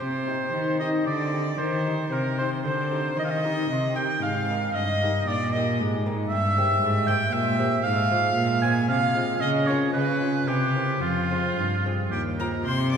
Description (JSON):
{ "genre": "classical, baroque-style sonata movement with continuo", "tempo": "114 BPM", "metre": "3/4", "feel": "rubato", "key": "C minor, F minor from 6.3 s", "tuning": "A4 = 444 Hz", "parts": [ { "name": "rich violin", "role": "melody", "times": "0.0-13.0 s", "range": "F4 to D6", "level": "-32 LUFS", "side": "left 4 dB", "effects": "none" }, { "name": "clear oboe", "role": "second line", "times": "0.0-13.0 s", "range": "F4 to Ab5", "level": "-26 LUFS", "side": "right 3 dB", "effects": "none" }, { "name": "lute", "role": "accompaniment", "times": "0.0-13.0 s", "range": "Eb2 to G4", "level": "-30 LUFS", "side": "left 1 dB", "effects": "none" }, { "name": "rich cello", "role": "bass", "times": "0.0-13.0 s", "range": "Eb2 to Eb3", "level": "-26 LUFS", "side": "equal", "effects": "none" } ], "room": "wet church reverb, RT60 3.2 s", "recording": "none", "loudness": "-22 LUFS", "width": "side -7 dB against mid", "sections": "0.0-12.7 A section", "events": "none", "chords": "0.0 Cm; 3.2 Eb; 4.8 Eb/G; 6.3 C7/G; 7.9 Fm/Ab; 9.4 Bbm/Db; 9.9 Db7; 10.5 C7; 11.0 Fm", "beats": "| 0.00 0.53 1.06 | 1.59 2.12 2.64 | 3.17 3.70 4.23 | 4.75 5.28 5.80 | 6.31 6.82 7.34 | 7.85 8.37 8.89 | 9.41 9.94 10.47 | 11.02 11.57 12.12 | 12.67" }